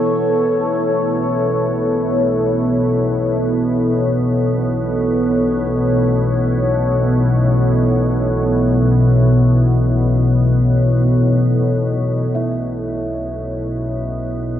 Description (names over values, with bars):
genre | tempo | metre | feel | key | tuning
dark ambient drone | free time | none | none | unclear | A4 = 439 Hz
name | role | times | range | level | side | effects
deep dark ambient pad | sustained chords | 0.0-14.6 s | B3 to C#5 | -17 LUFS | equal | chorus, built-in reverb
organ-like drone | drone | 0.0-14.6 s | B1 to B2 | -17 LUFS | left 1 dB | ensemble chorus, built-in reverb
quartz singing bowl | texture | 0.0-14.6 s | B3 to E5 | -32 LUFS | right 2 dB | none
room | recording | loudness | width
moderate plate reverb, RT60 2.6 s | none | -14 LUFS | side -11 dB against mid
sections
0.0-12.4 A section; 12.4-14.6 B section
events
fade-in on synth drone 0.0-12.4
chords
0.0 Bsus2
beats
free time